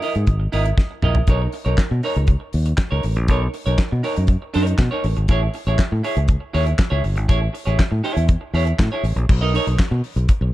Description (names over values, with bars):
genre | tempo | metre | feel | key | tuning
disco | 120 BPM | 4/4 | straight | B major | A4 = 440 Hz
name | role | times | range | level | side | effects
semi-hollow electric guitar | accompaniment | 0.0-10.5 s | D#4 to D#5 | -25 LUFS | right 2 dB | spring reverb
damped 70s drum kit | drums | 0.0-10.4 s | crash cymbal, handclaps, hi-hat, kick drum, snare drum, toms | -18 LUFS | equal | none
fingered electric bass | bass | 0.2-10.5 s | G1 to B2 | -19 LUFS | equal | none
room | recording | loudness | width
studio reverb | dark, warm production | -17 LUFS | side -15 dB against mid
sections
0.0-1.3 A section; 1.3-9.3 B section; 9.3-10.5 C section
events
drum fill 0.8-1.3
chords
0.0 F#13 (rootless); 1.3 Bmaj9; 5.0 Amaj7; 9.3 Bmaj9